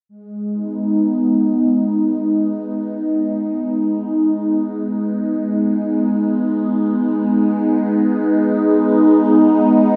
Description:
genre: ambient.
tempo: free time.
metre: none.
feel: none.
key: G# minor.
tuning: A4 = 441 Hz.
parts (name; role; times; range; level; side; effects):
phased analog pad; sustained chords; 0.3-10.0 s; G#3 to D#4; -17 LUFS; equal; phaser, chorus.
room: wet huge ambient reverb, RT60 8.5 s.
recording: dark, warm production.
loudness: -17 LUFS.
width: mono.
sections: 0.1-10.0 A section.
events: none.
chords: 0.1 G#m.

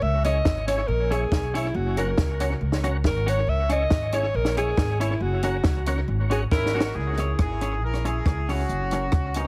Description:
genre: ska.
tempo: 138 BPM.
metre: 4/4.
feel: straight.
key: C# dorian.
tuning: A4 = 442 Hz.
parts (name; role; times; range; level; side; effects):
breathy alto saxophone; melody; 0.0-6.9 s; E4 to E5; -30 LUFS; equal; tape echo.
upright bass; bass; 0.0-9.5 s; F#1 to C#2; -28 LUFS; equal; none.
semi-hollow electric guitar; accompaniment; 0.2-9.5 s; C#4 to C#5; -35 LUFS; equal; tape echo, plate reverb.
tonewheel organ; stabs; 0.2-6.9 s; C#4 to C#5; -37 LUFS; equal; chorus vibrato, slow rotary speaker, tape echo, plate reverb.
compact cocktail drum kit; drums; 0.2-9.4 s; hi-hat, kick drum, rim click, snare drum; -28 LUFS; equal; tape echo.
warm horn section; melody; 6.5-9.5 s; B3 to A#4; -32 LUFS; equal; tape echo, plate reverb.
room: light reverb.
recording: heavily compressed radio sound.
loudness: -24 LUFS.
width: mono.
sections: 0.0-6.9 A section; 6.9-9.5 B section.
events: alto saxophone solo 0.0-6.9; drum fill 6.5-6.9.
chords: 0.0 C#m; 1.7 F#; 3.5 C#m; 5.2 F#; 6.9 C#m; 8.7 F#.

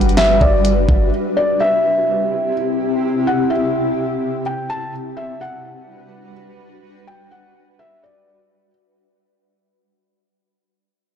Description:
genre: hip hop, atmospheric cloud-rap.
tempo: 126 BPM.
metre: 4/4.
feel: half-time.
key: unclear.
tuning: A4 = 440 Hz.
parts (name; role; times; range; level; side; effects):
felt-muted upright piano; melody; 0.0-8.7 s; D5 to A5; -19 LUFS; left 1 dB; tape echo.
granular cloud pad; sustained chords; 0.0-8.7 s; C3 to B4; -20 LUFS; left 1 dB; built-in reverb, sidechain pumping.
clean 808-style bass; bass; 0.0-1.1 s; G1; -18 LUFS; right 1 dB; transformer saturation.
smooth R&B drum kit; drums; 0.0-1.0 s; hi-hat, kick drum, snare drum; -17 LUFS; equal; none.
room: light reverb.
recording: blown-out, overdriven recording, overdrive.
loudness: -15 LUFS.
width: side -8 dB against mid.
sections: 0.0-8.7 A section.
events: fade-out 0.0-8.7.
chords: 0.0 Gmaj7; 1.1 C; 4.9 Gmaj7.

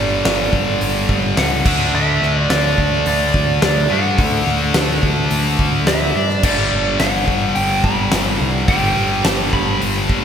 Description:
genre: hard rock.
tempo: 107 BPM.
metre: 4/4.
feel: straight.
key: D major.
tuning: A4 = 436 Hz.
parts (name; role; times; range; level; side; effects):
lightly driven lead guitar; melody; 0.0-10.2 s; D5 to B5; -21 LUFS; right 2 dB; digital delay.
tight distorted guitar; riff; 0.0-10.2 s; G2 to D4; -18 LUFS; left 1 dB; distortion.
growling picked electric bass; bass; 0.0-10.2 s; G1 to G2; -21 LUFS; equal; overdrive.
huge arena drum kit; drums; 0.3-10.2 s; crash cymbal, hi-hat, kick drum, snare drum; -20 LUFS; equal; gated reverb.
room: moderate lush hall reverb, RT60 1.6 s, small room ambience.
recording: bright 1980s-style digital production.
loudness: -14 LUFS.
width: side -8 dB against mid.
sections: 0.0-10.2 A section.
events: none.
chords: 0.0 G5; 1.7 D; 6.4 G.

